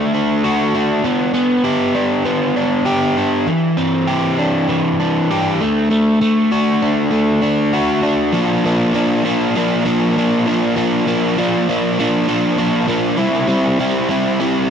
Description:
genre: rock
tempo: 99 BPM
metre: 4/4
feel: straight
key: unclear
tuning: A4 = 440 Hz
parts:
  - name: crunchy overdriven guitar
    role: solo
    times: 0.0-14.7 s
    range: E3 to G4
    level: -14 LUFS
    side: equal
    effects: digital delay
room: light reverb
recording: none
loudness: -14 LUFS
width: side -8 dB against mid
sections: 0.0-8.3 A section; 8.3-14.7 B section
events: none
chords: 0.0 D/A; 1.0 G; 3.5 Cadd9; 5.6 D; 8.3 Bb; 13.2 C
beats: 0.42 | 1.03 1.64 2.25 2.86 | 3.47 4.08 4.69 5.30 | 5.91 6.51 7.12 7.73 | 8.34 8.94 9.55 10.16 | 10.76 11.37 11.97 12.58 | 13.18 13.79 14.39

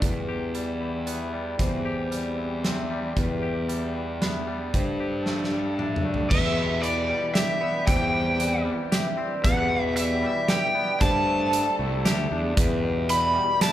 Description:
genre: post-rock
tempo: 115 BPM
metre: 3/4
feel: straight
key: E minor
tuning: A4 = 440 Hz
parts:
  - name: muted chamber string section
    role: sustained chords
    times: 0.0-13.7 s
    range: E3 to A4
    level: -37 LUFS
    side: left 1 dB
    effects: none
  - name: twangy electric guitar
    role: arpeggios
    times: 0.0-13.7 s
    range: E2 to G4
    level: -33 LUFS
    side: left 4 dB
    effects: none
  - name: vibraphone with medium hard mallets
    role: arpeggios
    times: 0.0-13.7 s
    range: B4 to E5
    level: -32 LUFS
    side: right 1 dB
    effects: none
  - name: fuzz fingered electric bass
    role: bass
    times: 0.0-13.4 s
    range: C2 to G2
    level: -28 LUFS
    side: equal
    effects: overdrive
  - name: big rock drum kit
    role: drums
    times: 0.0-13.7 s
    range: crash cymbal, hi-hat, kick drum, snare drum, toms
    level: -27 LUFS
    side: right 1 dB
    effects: none
  - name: overdriven slide guitar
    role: melody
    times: 6.3-13.7 s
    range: D5 to B5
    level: -25 LUFS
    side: equal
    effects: none
room: moderate recital hall reverb, RT60 1.7 s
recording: recorded in a church or concert hall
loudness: -22 LUFS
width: side -12 dB against mid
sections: 0.0-6.3 A section; 6.3-13.7 B section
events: drum fill 5.3-6.3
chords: 0.0 Em; 1.6 C/E; 3.2 Em; 4.7 Gsus2; 6.3 Em; 7.9 C/E; 9.4 Em; 11.0 Gsus2; 12.6 Em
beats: | 0.02 0.55 1.07 | 1.59 2.12 2.64 | 3.17 3.69 4.21 | 4.74 5.26 5.79 | 6.31 6.83 7.36 | 7.88 8.40 8.92 | 9.45 9.97 10.49 | 11.01 11.53 12.05 | 12.57 13.10 13.62

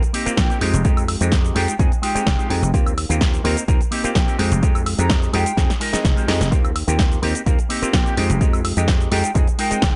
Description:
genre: filtered disco house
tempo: 127 BPM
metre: 4/4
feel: straight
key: unclear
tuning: A4 = 441 Hz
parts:
  - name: auto-wah clav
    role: accompaniment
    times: 0.0-10.0 s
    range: Ab3 to G5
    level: -28 LUFS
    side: equal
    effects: phaser, sidechain pumping
  - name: electric guitar with an envelope filter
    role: riff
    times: 0.0-9.8 s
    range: Ab3 to Ab5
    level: -28 LUFS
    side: equal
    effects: sidechain pumping
  - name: punchy analog drum machine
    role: drums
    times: 0.0-9.9 s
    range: cabasa, hi-hat, snare drum, woodblock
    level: -27 LUFS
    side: equal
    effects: sidechain pumping on hats, sidechain pumping on perc
  - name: dry thumbed slap bass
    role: bass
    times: 0.3-9.9 s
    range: F1 to F2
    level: -24 LUFS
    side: equal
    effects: tube saturation, sidechain pumping
  - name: silver concert flute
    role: melody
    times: 0.4-9.9 s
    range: G5 to Bb5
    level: -30 LUFS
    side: equal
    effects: vintage 12-bit sampler grit, sidechain pumping
  - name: electronic kick drum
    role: drums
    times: 0.4-9.9 s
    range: none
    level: -21 LUFS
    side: equal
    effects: none
room: digital ambience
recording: nothing above 10.9 kHz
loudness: -19 LUFS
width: mono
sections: 0.0-10.0 A section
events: drum fill 5.6-6.5; clean electric guitar fill 5.6-6.5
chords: 0.0 Eb6; 0.6 Fm9; 2.7 Eb6; 4.4 Fm9; 6.5 Eb6; 8.2 Fm9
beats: 0.38 | 0.85 1.32 1.79 2.27 | 2.74 3.21 3.68 4.16 | 4.63 5.10 5.57 6.05 | 6.52 6.99 7.46 7.94 | 8.41 8.88 9.35 9.83

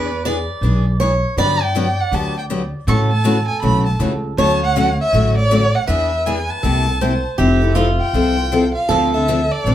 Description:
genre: acoustic string swing (jazz manouche)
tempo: 160 BPM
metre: 4/4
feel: swing 62% on 8ths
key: A major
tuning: A4 = 435 Hz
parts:
  - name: warm violin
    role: melody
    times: 0.0-9.7 s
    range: D5 to C#6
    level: -20 LUFS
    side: equal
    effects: none
  - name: picked swing-style acoustic guitar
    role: second line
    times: 0.0-9.7 s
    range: F4 to D5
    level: -22 LUFS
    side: right 3 dB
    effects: none
  - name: picked steel-string acoustic guitar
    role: accompaniment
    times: 0.0-9.7 s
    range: C3 to A4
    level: -20 LUFS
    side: left 3 dB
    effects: none
  - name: upright bass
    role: bass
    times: 0.0-9.7 s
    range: F1 to A2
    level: -19 LUFS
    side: equal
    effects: none
room: wet small room reverb, RT60 0.5 s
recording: heard from further back in the room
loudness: -14 LUFS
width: side -11 dB against mid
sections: 0.0-7.4 A section; 7.4-9.7 B section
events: none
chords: 0.0 E7; 1.4 Gmaj7; 2.9 A69; 4.4 Dmaj7; 5.9 E7; 6.6 C6; 7.4 Fmaj9; 8.9 Dm7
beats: 0.24 0.62 0.99 | 1.37 1.75 2.12 2.50 | 2.87 3.25 3.63 4.00 | 4.38 4.75 5.13 5.51 | 5.88 6.26 6.63 7.01 | 7.39 7.76 8.14 8.52 | 8.89 9.27 9.65

